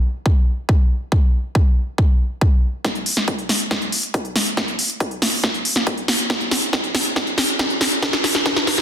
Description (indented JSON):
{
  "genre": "trance",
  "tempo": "139 BPM",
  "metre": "4/4",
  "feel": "straight",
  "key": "none",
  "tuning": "none",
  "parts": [
    { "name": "electronic kick drum", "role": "drums", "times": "0.3-8.5 s", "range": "none", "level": "-18 LUFS", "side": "equal", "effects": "high-pass filter on kick, high-pass filter on room" },
    { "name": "big-room dance drum kit", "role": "drums", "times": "2.8-8.8 s", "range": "hi-hat, snare drum", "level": "-18 LUFS", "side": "equal", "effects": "none" }
  ],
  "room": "light reverb",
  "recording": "dense, heavily limited modern master",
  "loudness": "-17 LUFS",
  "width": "side -9 dB against mid",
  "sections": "0.0-2.8 A section; 2.8-8.8 B section",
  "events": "build-up 2.8-8.8; drum fill 2.8-8.8",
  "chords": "none",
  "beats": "0.26 0.69 | 1.12 1.55 1.98 2.41 | 2.85 3.28 3.71 4.14 | 4.57 5.00 5.44 5.87 | 6.30 6.73 7.16 7.59 | 8.03 8.46"
}